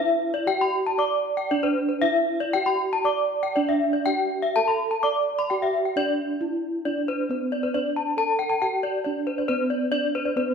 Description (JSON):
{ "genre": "gamelan", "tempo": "116-137 BPM", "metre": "4/4", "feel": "straight", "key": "D slendro", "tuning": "A4 = 440 Hz", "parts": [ { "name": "gamelan-type bronze metallophone", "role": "melody", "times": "0.0-10.5 s", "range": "C4-45c to D5", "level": "-25 LUFS", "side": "right 3 dB", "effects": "none" }, { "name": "gamelan-type bronze metallophone", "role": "arpeggios", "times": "0.0-10.5 s", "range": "C5-45c to D6", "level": "-24 LUFS", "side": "left 3 dB", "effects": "none" } ], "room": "wet scoring stage reverb, RT60 1.7 s", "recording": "none", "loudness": "-22 LUFS", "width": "side -6 dB against mid", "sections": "0.0-6.9 A section; 6.9-10.5 B section", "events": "break 6.2-6.9", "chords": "none" }